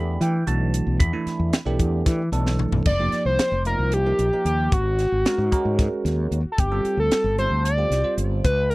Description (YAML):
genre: electric jazz fusion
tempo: 226 BPM (eighths)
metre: 7/8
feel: straight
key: unclear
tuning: A4 = 443 Hz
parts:
  - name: bell-like tine electric piano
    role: accompaniment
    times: 0.0-8.4 s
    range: E3 to B5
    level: -27 LUFS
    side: right 3 dB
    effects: phaser
  - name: fretless electric bass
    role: bass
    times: 0.0-8.7 s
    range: F1 to E3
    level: -23 LUFS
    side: equal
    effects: none
  - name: crisp fusion drum kit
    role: drums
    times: 0.2-8.7 s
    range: crash cymbal, hi-hat, kick drum, snare drum, toms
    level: -23 LUFS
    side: equal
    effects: none
  - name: overdriven synth lead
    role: melody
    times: 2.9-8.7 s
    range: Gb4 to D5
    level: -23 LUFS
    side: equal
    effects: distortion, tape echo
room: little or no reverb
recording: dry, close 1970s-style studio recording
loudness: -19 LUFS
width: side -21 dB against mid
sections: 0.0-2.9 A section; 2.9-8.7 B section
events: drum fill 2.5-2.9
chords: 0.0 Em9; 2.9 F9sus4; 4.7 Ab9sus4; 6.6 G9sus4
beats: 0.21 0.47 0.74 | 1.00 1.27 1.53 1.80 2.06 2.33 2.59 | 2.86 3.12 3.39 3.65 3.92 4.19 4.45 | 4.72 4.98 5.25 5.52 5.78 6.05 6.32 | 6.58 6.85 7.11 7.38 7.65 7.91 8.18 | 8.45 8.71